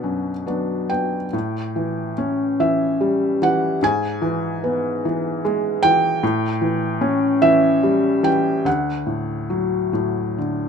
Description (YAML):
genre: classical, lyrical solo piano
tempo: 49 BPM (dotted quarters)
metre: 6/8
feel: uneven beats, rubato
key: unclear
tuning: A4 = 440 Hz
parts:
  - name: felt-muted upright piano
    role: solo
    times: 0.0-10.7 s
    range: D2 to B5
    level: -18 LUFS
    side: equal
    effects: none
room: light reverb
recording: none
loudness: -18 LUFS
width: side -6 dB against mid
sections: 0.0-1.3 A section; 1.3-10.7 B section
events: none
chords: 0.0 Bm; 1.3 A7; 3.8 E/G#; 6.2 A7; 8.7 D